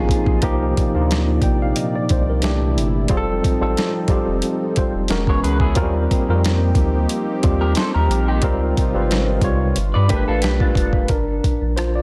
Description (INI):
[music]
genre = R&B, neo-soul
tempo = 90 BPM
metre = 4/4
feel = swing 55% on 16ths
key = C dorian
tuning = A4 = 441 Hz
[part]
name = electric guitar through a small old amp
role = second line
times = 0.0-0.4, 5.3-11.1 s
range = D4 to D5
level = -29 LUFS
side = equal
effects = analog chorus, tape echo
[part]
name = tine electric piano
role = accompaniment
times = 0.0-12.0 s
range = C3 to G5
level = -24 LUFS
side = equal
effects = overdrive
[part]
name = warm analog pad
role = sustained chords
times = 0.0-11.1 s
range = Bb2 to D5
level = -29 LUFS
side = equal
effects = chorus
[part]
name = round analog bass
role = bass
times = 0.0-12.0 s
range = E1 to G2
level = -23 LUFS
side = equal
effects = none
[part]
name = boom bap sampler-style drum kit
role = drums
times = 0.1-11.9 s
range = hi-hat, kick drum, rim click, snare drum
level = -23 LUFS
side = equal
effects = none
[sound]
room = digital ambience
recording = dense, heavily limited modern master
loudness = -19 LUFS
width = mono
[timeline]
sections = 0.0-11.1 A section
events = none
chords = 0.4 Cm9; 2.4 C9; 3.1 F7; 5.1 E6; 5.8 Eb6; 8.4 Dbmaj9; 9.8 G7; 11.1 Gm7